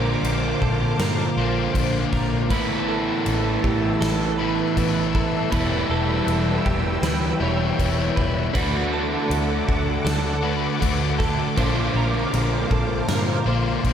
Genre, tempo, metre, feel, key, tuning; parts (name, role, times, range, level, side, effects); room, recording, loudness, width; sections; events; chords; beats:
rock, shoegaze and dream pop; 79 BPM; 4/4; straight; A4 = 441 Hz
string machine, violas; sustained chords; 0.0-13.9 s; A4 to E6; -30 LUFS; equal; phaser, ensemble chorus
direct-recorded clean electric guitar; arpeggios; 0.0-13.9 s; F#4 to C#5; -30 LUFS; right 4 dB; ensemble chorus, analog delay
overdriven semi-hollow guitar; riff; 0.0-13.9 s; E2 to F#4; -26 LUFS; left 7 dB; wide subtle chorus
overdriven semi-hollow guitar; riff; 0.0-13.9 s; E2 to F#4; -26 LUFS; right 6 dB; reverse reverb
vintage muted fingered electric bass; bass; 0.0-13.9 s; E1 to G2; -26 LUFS; equal
gated 80s drum kit; drums; 0.2-13.9 s; crash cymbal, kick drum, snare drum; -28 LUFS; left 1 dB
wet huge ambient reverb, RT60 4.4 s; dreamy mix soaked in reverb; -19 LUFS; side -8 dB against mid
0.0-13.9 A section
0.0 Bbadd9; 2.5 Asus2; 5.5 Em; 8.6 D; 11.6 Bbadd9
0.23 0.99 1.75 | 2.50 3.26 4.01 4.77 | 5.53 6.28 7.04 7.79 | 8.55 9.31 10.06 10.82 | 11.58 12.34 13.09 13.85